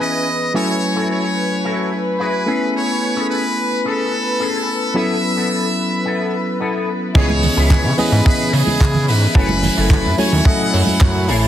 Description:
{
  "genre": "nu-disco, nu disco",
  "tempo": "109 BPM",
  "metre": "4/4",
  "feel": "straight",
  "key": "C# minor",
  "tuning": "A4 = 441 Hz",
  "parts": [
    { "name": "muted trumpet section", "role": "melody", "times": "0.0-11.3 s", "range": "G#4 to F#5", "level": "-22 LUFS", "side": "left 1 dB", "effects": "ping-pong delay" },
    { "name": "bright tine electric piano", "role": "accompaniment", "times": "0.0-11.3 s", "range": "E3 to G#5", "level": "-20 LUFS", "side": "equal", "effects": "none" },
    { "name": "warm studio string section", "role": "sustained chords", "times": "0.0-11.5 s", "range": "E4 to B4", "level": "-25 LUFS", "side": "left 1 dB", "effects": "sidechain pumping" },
    { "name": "electric guitar with an envelope filter", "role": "riff", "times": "0.0-11.5 s", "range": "B3 to D#5", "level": "-25 LUFS", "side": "left 3 dB", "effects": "ensemble chorus" },
    { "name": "tight funk drum kit", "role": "drums", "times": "7.1-11.4 s", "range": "crash cymbal, handclaps, hi-hat", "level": "-25 LUFS", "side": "right 4 dB", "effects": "low-pass filter on cymbals, low-pass filter on hats, low-pass filter on snare, low-pass filter on room" },
    { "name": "fat analog bass", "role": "bass", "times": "7.2-11.5 s", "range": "F#1 to C#3", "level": "-17 LUFS", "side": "right 1 dB", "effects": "sidechain pumping" },
    { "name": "kick drum", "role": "drums", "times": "7.2-11.1 s", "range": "none", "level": "-15 LUFS", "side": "equal", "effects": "none" },
    { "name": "congas", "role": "percussion", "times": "7.3-11.0 s", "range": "none", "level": "-24 LUFS", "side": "right 2 dB", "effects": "none" }
  ],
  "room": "moderate echo chamber reverb, RT60 1.6 s",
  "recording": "heavily compressed radio sound, multiband compression",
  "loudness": "-14 LUFS",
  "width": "side -11 dB against mid",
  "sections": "0.0-7.2 A section; 7.2-11.5 B section",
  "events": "drop 7.2-11.5",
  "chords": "0.0 C#m7; 0.5 F#m7; 2.5 Amaj7; 5.0 B7sus4; 7.2 C#m7; 9.4 F#m7"
}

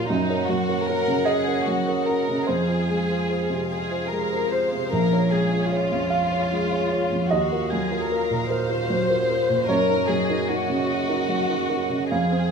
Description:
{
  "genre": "neoclassical piano and strings",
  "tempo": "50 BPM (dotted quarters)",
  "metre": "6/8",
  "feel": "rubato",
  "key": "unclear",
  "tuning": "A4 = 440 Hz",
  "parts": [
    { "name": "warm chamber violin section", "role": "melody", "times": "0.0-12.5 s", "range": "Eb4 to C5", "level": "-25 LUFS", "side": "left 3 dB", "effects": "none" },
    { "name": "dark upright piano", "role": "accompaniment", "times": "0.0-12.5 s", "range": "Bb1 to F5", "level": "-22 LUFS", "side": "right 2 dB", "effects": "none" },
    { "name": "warm chamber string section", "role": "sustained chords", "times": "0.0-12.5 s", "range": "Gb3 to Gb5", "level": "-33 LUFS", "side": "left 1 dB", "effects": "none" }
  ],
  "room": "wet large studio reverb, RT60 1.3 s",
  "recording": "band playing live in one room",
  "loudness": "-20 LUFS",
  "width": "side -6 dB against mid",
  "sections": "0.0-12.5 A section",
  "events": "none",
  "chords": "0.1 Gb6; 2.5 Fm; 4.9 Bbm7; 7.3 Ebmadd9; 9.7 Gb6"
}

